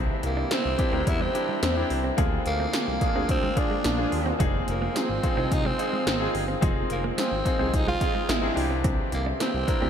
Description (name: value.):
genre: 1980s-style pop.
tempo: 108 BPM.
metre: 4/4.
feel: straight.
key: F dorian.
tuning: A4 = 440 Hz.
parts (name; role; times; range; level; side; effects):
clear concert grand piano; accompaniment; 0.0-9.9 s; C3 to Bb4; -30 LUFS; left 3 dB; none.
warm French horn section; sustained chords; 0.0-9.9 s; D3 to G4; -37 LUFS; right 1 dB; none.
direct-recorded clean electric guitar; riff; 0.0-9.9 s; F3 to D4; -35 LUFS; right 5 dB; none.
smooth synth bass; bass; 0.0-9.9 s; F1 to E2; -30 LUFS; equal; none.
80s electronic pad drums; drums; 0.2-9.8 s; hi-hat, kick drum, snare drum, tambourine; -28 LUFS; equal; none.
growling tenor saxophone; melody; 0.3-9.9 s; Bb3 to F4; -29 LUFS; right 1 dB; tape echo.
analog synth brass; stabs; 0.5-9.9 s; D4 to Ab4; -36 LUFS; right 2 dB; none.
room: moderate cathedral reverb, RT60 6.0 s.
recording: dreamy mix soaked in reverb.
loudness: -23 LUFS.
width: side -8 dB against mid.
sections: 0.0-9.9 A section.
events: none.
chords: 0.0 Cadd9; 2.2 Bb7; 4.4 Fm7; 8.6 Cadd9.